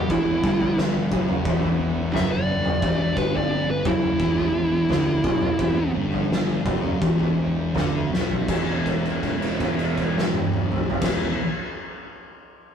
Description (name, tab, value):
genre	stoner and doom metal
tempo	86 BPM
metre	4/4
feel	uneven beats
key	E minor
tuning	A4 = 440 Hz
part	fuzz lead guitar	melody	0.0-5.9 s	E4 to E5	-24 LUFS	right 1 dB	distortion
part	tonewheel organ	sustained chords	0.0-2.8 s	E3 to F#5	-36 LUFS	equal	none
part	thick fuzz guitar	riff	0.0-11.4 s	E2 to E3	-29 LUFS	left 6 dB	distortion
part	thick fuzz guitar	riff	0.0-11.4 s	E2 to E3	-28 LUFS	right 4 dB	distortion
part	fuzz fingered electric bass	bass	0.0-11.3 s	E1 to D2	-28 LUFS	equal	overdrive
part	oversized low-tuned drum kit	drums	0.1-11.2 s	crash cymbal, kick drum, snare drum, toms	-24 LUFS	equal	none
room	light reverb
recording	rough rehearsal-room recording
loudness	-20 LUFS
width	side -8 dB against mid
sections	0.0-8.5 A section; 8.5-11.5 B section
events	lead electric guitar solo 0.0-8.5; slowing down 2.8-8.5; drum fill 8.1-8.5; held note 8.5-11.0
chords	0.0 Em; 8.5 E5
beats	| 0.10 0.78 1.47 2.15 | 2.83 3.51 4.20 4.89 | 5.59 6.30 7.02 7.74 | 8.48 9.23 9.98 10.72